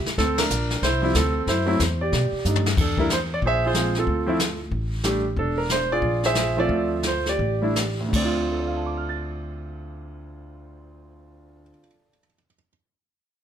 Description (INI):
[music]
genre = jazz piano trio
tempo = 157-185 BPM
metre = 4/4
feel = swing 62% on 8ths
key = D minor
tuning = A4 = 440 Hz
[part]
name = warm baby grand piano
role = melody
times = 0.0-12.7 s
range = D2 to A6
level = -24 LUFS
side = right 1 dB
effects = none
[part]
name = upright bass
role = bass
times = 0.0-11.7 s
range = E1 to B2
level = -27 LUFS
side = equal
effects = none
[part]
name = jazz brush drum kit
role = drums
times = 0.1-8.4 s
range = brushed snare drum, crash cymbal, hi-hat, kick drum, ride cymbal, snare drum, toms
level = -26 LUFS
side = left 2 dB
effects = none
[sound]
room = light reverb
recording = none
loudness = -20 LUFS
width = side -9 dB against mid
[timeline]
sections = 0.0-2.8 A section; 2.8-8.1 B section; 8.1-11.2 C section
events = band accent 0.3; drum fill 2.4-2.8; slowing down 5.4-8.1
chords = 0.2 D7sus2; 1.5 F#7(b5, no3); 2.1 B7alt; 2.8 E7(b5, no3); 3.4 Bbsus2; 4.1 Dm7; 4.7 A7sus4; 5.4 E7(#5, no3); 6.0 Bbsus2; 6.7 Dm7; 7.4 A7sus4; 8.1 Dm7